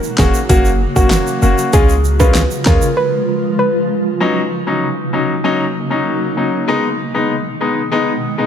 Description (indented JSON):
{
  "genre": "dancehall",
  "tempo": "97 BPM",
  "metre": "4/4",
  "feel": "straight",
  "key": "unclear",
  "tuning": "A4 = 441 Hz",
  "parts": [
    { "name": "granular cloud pad", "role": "sustained chords", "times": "0.0-8.5 s", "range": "B2 to F#4", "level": "-20 LUFS", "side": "right 1 dB", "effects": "built-in reverb, sidechain pumping" },
    { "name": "egg shaker and timbales", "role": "percussion", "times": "0.0-3.0 s", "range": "none", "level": "-26 LUFS", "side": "right 8 dB", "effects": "none" },
    { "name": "soft round pluck", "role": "melody", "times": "0.2-4.0 s", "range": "F#4 to B4", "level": "-19 LUFS", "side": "equal", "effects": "chorus, tape echo" },
    { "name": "bright concert grand piano", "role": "accompaniment", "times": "0.2-8.5 s", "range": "F#3 to F#4", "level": "-17 LUFS", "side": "left 3 dB", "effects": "none" },
    { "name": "warm 808-style bass", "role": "bass", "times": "0.2-2.8 s", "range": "E#1 to D#2", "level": "-15 LUFS", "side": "equal", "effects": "none" },
    { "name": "pop drum kit", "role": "drums", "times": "0.2-2.8 s", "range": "handclaps, hi-hat, kick drum, snare drum", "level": "-14 LUFS", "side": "equal", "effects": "none" }
  ],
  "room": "light reverb, digital ambience",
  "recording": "none",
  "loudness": "-13 LUFS",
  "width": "side -8 dB against mid",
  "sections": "0.0-4.2 A section; 4.2-8.5 B section",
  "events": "break 3.0-4.2",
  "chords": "0.0 F#; 1.7 C#; 4.2 D#m7; 6.7 G#m",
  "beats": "0.50 1.11 | 1.73 2.35 2.97 3.59 | 4.21 4.83 5.45 6.06 | 6.68 7.30 7.92"
}